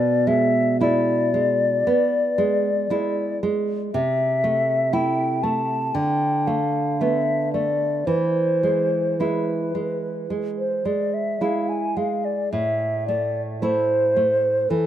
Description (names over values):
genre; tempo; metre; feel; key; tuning
romantic duo for flute and classical guitar; 52-60 BPM; 4/4; rubato; unclear; A4 = 439 Hz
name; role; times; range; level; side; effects
mellow hollow silver concert flute; melody; 0.0-14.9 s; A4 to A5; -22 LUFS; left 2 dB; none
nylon-string guitar; accompaniment; 0.0-14.9 s; A2 to E4; -23 LUFS; right 3 dB; none
room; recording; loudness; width
moderate plate reverb, RT60 3.5 s; rough home demo mix; -19 LUFS; side -11 dB against mid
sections
0.0-14.9 A section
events
none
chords
0.0 E7/B; 3.9 Am/C; 5.9 Dm69; 8.1 E; 12.5 Am